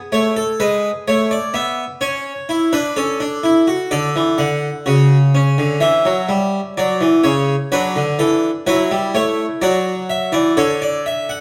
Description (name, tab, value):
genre	classical, baroque-style 3-part fugue for harpsichord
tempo	63 BPM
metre	4/4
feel	straight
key	D major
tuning	A4 = 440 Hz
part	harpsichord	solo	0.1-11.4 s	C#3 to F#5	-17 LUFS	equal	none
room	wet stone room reverb, RT60 1.2 s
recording	none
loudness	-17 LUFS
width	mono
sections	0.0-11.4 A section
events	none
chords	0.1 A; 2.0 A/C#; 3.9 D; 5.8 C#dim/E; 7.7 D